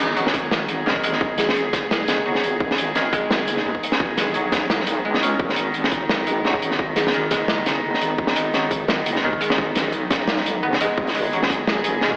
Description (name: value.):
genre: half-time drum and bass.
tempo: 172 BPM.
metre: 4/4.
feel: swing 56% on 16ths, half-time.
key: G# minor.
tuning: A4 = 442 Hz.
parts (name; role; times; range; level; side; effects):
rich chamber cello section; sustained chords; 0.0-12.2 s; D#3 to G#4; -26 LUFS; equal; sidechain pumping.
koto; arpeggios; 0.0-12.2 s; D#3 to G#4; -26 LUFS; equal; digital delay.
deep soft wobble bass; bass; 0.0-12.2 s; D#1 to D#2; -27 LUFS; equal; chorus, tube saturation.
crunchy breakbeat drum kit; drums; 0.2-12.1 s; hi-hat, snare drum; -22 LUFS; equal; none.
electronic kick drum; drums; 0.3-12.2 s; none; -25 LUFS; equal; none.
kalimba; melody; 1.4-1.9, 7.0-7.5 s; G#4; -29 LUFS; equal; none.
flickering grainy texture; texture; 11.6-12.2 s; G#4; -28 LUFS; equal; built-in reverb.
room: moderate lush hall reverb, RT60 2.1 s.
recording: played on a big sound system in a bare room, stone room reverb, AM radio sound.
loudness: -18 LUFS.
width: side -37 dB against mid.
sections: 0.0-12.2 A section.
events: kick drops out 10.6-11.0.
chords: 0.0 G#m.